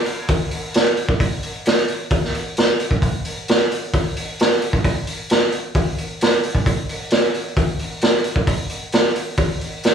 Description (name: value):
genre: rock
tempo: 132 BPM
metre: 4/4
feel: straight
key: none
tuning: none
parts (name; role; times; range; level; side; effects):
- raw garage drum kit; drums; 0.1-9.9 s; hi-hat, kick drum, snare drum; -17 LUFS; right 1 dB; none
room: light reverb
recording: live gig heard through the venue's PA, club reverb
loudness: -17 LUFS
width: side -7 dB against mid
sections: 0.0-9.9 A section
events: none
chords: none